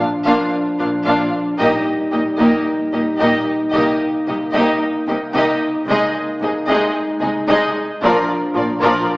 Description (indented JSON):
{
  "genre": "cinematic, epic orchestral film score",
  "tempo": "112 BPM",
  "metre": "4/4",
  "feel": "straight",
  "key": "Bb mixolydian",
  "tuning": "A4 = 441 Hz",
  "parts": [
    { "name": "rich symphonic violin section", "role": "second line", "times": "0.0-9.1 s", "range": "F4 to F5", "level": "-20 LUFS", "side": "equal", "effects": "none" },
    { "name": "rich symphonic viola section", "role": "accompaniment", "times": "0.0-9.1 s", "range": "F3 to F4", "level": "-20 LUFS", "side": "equal", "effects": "none" },
    { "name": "dark French horn section", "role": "sustained chords", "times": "0.0-9.2 s", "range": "F3 to Eb4", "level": "-20 LUFS", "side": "equal", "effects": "none" },
    { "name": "clear chamber double bass section", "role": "bass", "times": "0.0-8.9 s", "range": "Bb1 to C2", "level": "-34 LUFS", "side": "equal", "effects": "none" },
    { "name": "rich symphonic cello section", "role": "bass", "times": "0.0-8.9 s", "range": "Bb2 to C3", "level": "-24 LUFS", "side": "equal", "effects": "none" },
    { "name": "taiko ensemble", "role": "drums", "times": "0.3-0.5, 3.7-4.8, 8.0-9.1 s", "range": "none", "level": "-42 LUFS", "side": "equal", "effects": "none" }
  ],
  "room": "wet recital hall reverb, RT60 1.4 s",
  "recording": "recorded in a church or concert hall, small speaker sound",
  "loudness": "-15 LUFS",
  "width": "side -24 dB against mid",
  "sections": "0.0-9.2 A section",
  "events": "build-up 0.0-9.2",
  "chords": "0.0 Bb; 1.6 Eb/Bb; 3.7 Cm7; 5.9 Ab/C; 8.0 Bb"
}